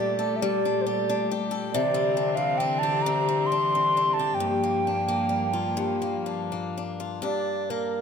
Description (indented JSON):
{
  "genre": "celtic folk, Celtic slow air",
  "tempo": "58-70 BPM",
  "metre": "3/4",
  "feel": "rubato",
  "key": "G dorian",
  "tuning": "A4 = 440 Hz",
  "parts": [
    { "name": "baroque flute", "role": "melody", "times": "0.0-8.0 s", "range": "Bb4 to C6", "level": "-26 LUFS", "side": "right 3 dB", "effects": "slapback echo" },
    { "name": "picked swing-style acoustic guitar", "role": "accompaniment", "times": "0.0-8.0 s", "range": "G2 to Bb4", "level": "-28 LUFS", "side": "left 8 dB", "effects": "none" },
    { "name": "rich chamber string section", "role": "sustained chords", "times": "0.0-7.2 s", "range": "G2 to C4", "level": "-31 LUFS", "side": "right 1 dB", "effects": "none" }
  ],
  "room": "light reverb",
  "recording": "close, detailed microphones",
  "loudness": "-23 LUFS",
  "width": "side -6 dB against mid",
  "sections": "0.0-7.2 A section",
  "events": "none",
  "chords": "0.0 Gmadd9; 1.7 Cadd9; 4.4 Gm7; 7.2 Gm"
}